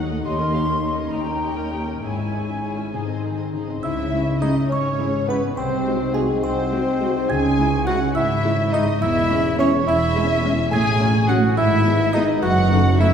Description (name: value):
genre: cinematic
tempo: 69 BPM (dotted quarters)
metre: 6/8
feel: straight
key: C# minor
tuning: A4 = 440 Hz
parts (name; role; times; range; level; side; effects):
- warm studio violin section; melody; 0.0-13.1 s; G#4 to G#5; -33 LUFS; left 2 dB; none
- warm studio violin section; second line; 0.0-13.1 s; G#4 to G#5; -30 LUFS; left 2 dB; none
- warm studio viola section; accompaniment; 0.0-13.1 s; F#3 to B#4; -32 LUFS; right 1 dB; none
- concert harp; arpeggios; 0.0-13.1 s; F#2 to C#6; -26 LUFS; left 5 dB; none
- dark studio cello section; bass; 0.0-13.1 s; D#2 to D#3; -25 LUFS; right 2 dB; none
- warm studio double bass section; bass; 0.0-13.1 s; E1 to D#2; -25 LUFS; right 2 dB; none
- mellow hollow flute section; second line; 0.2-13.1 s; G#4 to B#5; -29 LUFS; equal; none
- music box; melody; 3.8-13.1 s; G#5 to G#6; -31 LUFS; right 4 dB; none
- warm clarinet; second line; 3.8-13.1 s; G#3 to G#4; -28 LUFS; left 1 dB; none
- warm bassoon; accompaniment; 3.8-13.1 s; G#3 to G#4; -24 LUFS; right 1 dB; none
- warm French horn section; sustained chords; 4.1-13.1 s; F#3 to F#4; -28 LUFS; left 2 dB; none
room: wet scoring stage reverb, RT60 2.1 s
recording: heard from further back in the room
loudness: -18 LUFS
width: side -8 dB against mid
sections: 0.0-3.8 A section; 3.8-13.1 B section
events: none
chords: 0.2 D#7; 2.0 C#m/G#; 2.9 G#; 3.8 C#m; 5.6 G#7/B#; 7.3 C#m; 9.0 C#m/E; 10.7 F#m/A; 11.6 E/G#; 12.4 D#dim/F#